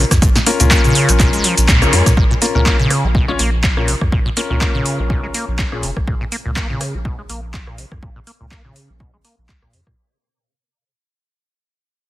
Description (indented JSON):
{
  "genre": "acid house",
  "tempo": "123 BPM",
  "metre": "4/4",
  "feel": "swing 55% on 16ths",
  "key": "Bb minor",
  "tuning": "A4 = 440 Hz",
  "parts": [
    { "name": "acid bass, saw", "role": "riff", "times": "0.0-9.8 s", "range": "Bb2 to Bb3", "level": "-21 LUFS", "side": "equal", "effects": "tube saturation, sidechain pumping, tape echo" },
    { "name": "warm sub bass", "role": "bass", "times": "0.0-9.9 s", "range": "F1 to Bb2", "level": "-19 LUFS", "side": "equal", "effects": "sidechain pumping" },
    { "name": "electro analog drum machine", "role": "drums", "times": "0.1-10.0 s", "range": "handclaps, hi-hat, rim click, shaker, snare drum", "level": "-18 LUFS", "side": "equal", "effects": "none" },
    { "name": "electronic kick drum", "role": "drums", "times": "0.1-10.0 s", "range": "none", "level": "-16 LUFS", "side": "equal", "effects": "overdrive" },
    { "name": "clear grand piano", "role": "stabs", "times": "0.5-5.8 s", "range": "Db4 to Db5", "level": "-22 LUFS", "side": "left 5 dB", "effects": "tape echo" }
  ],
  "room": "light reverb",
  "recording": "dense, heavily limited modern master",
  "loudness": "-13 LUFS",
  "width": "side -15 dB against mid",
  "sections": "0.0-2.2 A section; 2.2-10.0 B section",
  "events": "drop 0.0-2.2; band accent 1.7; fade-out 2.2-10.0; filter sweep on acid bass 2.2-10.0",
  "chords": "0.0 Bbm",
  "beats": "| 0.22 0.71 1.20 1.69 | 2.17 2.66 3.15 3.64 | 4.12 4.61 5.10 5.59 | 6.08 6.56 7.05 7.54 | 8.03 8.51 9.00 9.49"
}